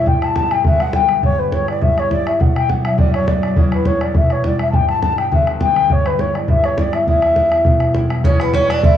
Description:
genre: celtic folk, Celtic reel.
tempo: 205 BPM.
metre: 4/4.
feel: swing 54% on 8ths.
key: E dorian.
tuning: A4 = 444 Hz.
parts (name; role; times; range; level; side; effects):
mellow baroque flute; melody; 0.0-9.0 s; B4 to A5; -17 LUFS; left 2 dB; none.
concert harp; accompaniment; 0.0-9.0 s; E1 to E4; -20 LUFS; left 1 dB; cassette tape.
bodhran; percussion; 0.1-8.9 s; none; -17 LUFS; equal; none.
Irish bouzouki; second line; 8.2-9.0 s; B3 to E4; -18 LUFS; right 4 dB; cassette tape.
room: light reverb, small room ambience.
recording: home recording on cassette.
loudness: -13 LUFS.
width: side -10 dB against mid.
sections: 0.0-8.2 A section.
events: none.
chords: 0.1 G; 1.2 Em/G; 2.4 Bm; 3.6 Em; 4.7 G; 5.9 Em/G; 7.1 Em.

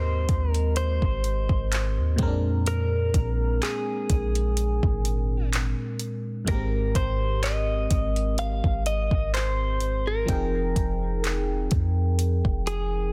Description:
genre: contemporary R&B.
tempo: 63 BPM.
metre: 4/4.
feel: swing 54% on 16ths.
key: Ab major.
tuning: A4 = 438 Hz.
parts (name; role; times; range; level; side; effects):
direct-recorded clean electric guitar; melody; 0.0-13.1 s; Ab4 to F5; -33 LUFS; equal; tape echo.
FM electric piano; accompaniment; 0.0-13.1 s; Ab2 to G5; -34 LUFS; equal; chorus.
clean 808-style bass; bass; 0.0-13.1 s; F1 to F2; -28 LUFS; equal; none.
smooth R&B drum kit; drums; 0.3-12.9 s; handclaps, hi-hat, kick drum; -30 LUFS; equal; none.
room: digital ambience.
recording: dense, heavily limited modern master.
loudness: -25 LUFS.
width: mono.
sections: 0.0-13.1 A section.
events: none.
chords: 0.0 Abmaj9; 2.2 Bb9; 6.5 Abmaj9; 10.3 Fm11.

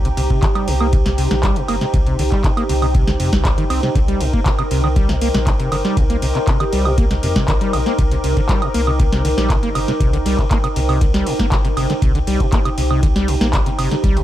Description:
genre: acid house.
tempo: 119 BPM.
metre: 4/4.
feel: straight.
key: C minor.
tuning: A4 = 440 Hz.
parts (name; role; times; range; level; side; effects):
warm analog pad; sustained chords; 0.0-14.2 s; G4 to Bb4; -26 LUFS; equal; chorus, sidechain pumping.
deep acid bass; riff; 0.0-14.2 s; C2 to C4; -22 LUFS; equal; overdrive, wide subtle chorus, ping-pong delay.
warm sub bass; bass; 0.0-14.2 s; G1 to F2; -21 LUFS; equal; sidechain pumping.
warbly tape-like pad; texture; 0.0-14.2 s; Eb4 to D6; -25 LUFS; right 1 dB; chorus, built-in reverb, sidechain pumping.
booming analog drum machine; drums; 0.1-14.2 s; handclaps, hi-hat, ride cymbal, snare drum, woodblock; -23 LUFS; right 1 dB; none.
electronic kick drum; drums; 0.3-14.1 s; none; -17 LUFS; equal; none.
vibraphone with medium mallets; melody; 6.6-7.0 s; G4; -27 LUFS; right 3 dB; ping-pong delay.
room: little or no reverb.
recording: none.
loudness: -14 LUFS.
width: side -13 dB against mid.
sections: 0.0-14.2 A section.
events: none.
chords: 0.0 Cm7.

